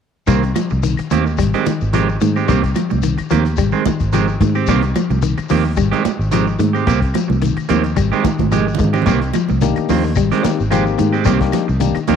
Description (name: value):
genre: afrobeat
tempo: 109 BPM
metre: 4/4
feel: swing 54% on 16ths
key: C minor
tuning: A4 = 441 Hz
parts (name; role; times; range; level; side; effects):
- clean electric guitar; arpeggios; 0.3-12.2 s; Eb3 to G3; -21 LUFS; left 10 dB; none
- clean electric guitar; stabs; 0.3-12.2 s; Eb3 to G4; -20 LUFS; right 10 dB; slapback echo
- fingered electric bass; bass; 0.3-12.2 s; Ab1 to Ab2; -18 LUFS; equal; none
- damped 70s drum kit; drums; 0.3-12.2 s; hi-hat, kick drum, snare drum; -23 LUFS; left 2 dB; vintage 12-bit sampler grit
- shekere; percussion; 0.3-12.2 s; none; -28 LUFS; left 7 dB; none
- claves; percussion; 0.6-12.1 s; none; -33 LUFS; left 12 dB; none
- congas; percussion; 0.6-12.2 s; none; -22 LUFS; right 13 dB; none
- barky tine electric piano; accompaniment; 9.6-12.2 s; Bb3 to Bb4; -21 LUFS; left 11 dB; overdrive
room: light reverb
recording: 1960s-style stereo with parts hard left and right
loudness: -14 LUFS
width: side -7 dB against mid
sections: 0.3-12.2 A section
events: drum fill 8.4-9.1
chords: 0.3 Cm7; 1.4 Abmaj7; 2.5 Cm7; 3.6 Abmaj7; 4.7 Cm7; 5.8 Abmaj7; 6.9 Cm7; 8.0 Abmaj7; 9.1 Cm7; 10.2 Abmaj7; 11.3 Cm7